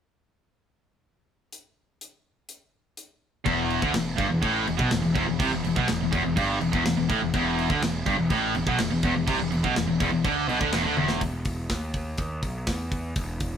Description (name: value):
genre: heavy metal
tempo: 124 BPM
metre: 4/4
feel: straight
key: E minor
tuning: A4 = 441 Hz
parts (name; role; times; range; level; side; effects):
- tight metal drum kit; drums; 1.5-13.5 s; crash cymbal, hi-hat, kick drum, snare drum, toms; -30 LUFS; equal; none
- distorted electric guitar; riff; 3.4-11.2 s; E2 to D3; -26 LUFS; right 8 dB; overdrive
- distorted electric guitar; riff; 3.5-11.2 s; E2 to D3; -27 LUFS; left 6 dB; overdrive
- fuzz picked electric bass; bass; 3.5-13.6 s; E1 to E2; -31 LUFS; equal; overdrive
room: light reverb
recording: band playing live in one room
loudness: -23 LUFS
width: side -8 dB against mid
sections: 1.5-3.5 A section; 3.5-11.2 B section; 11.2-13.6 C section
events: drum fill 11.0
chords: 1.5 N.C.; 3.5 Em; 11.2 E5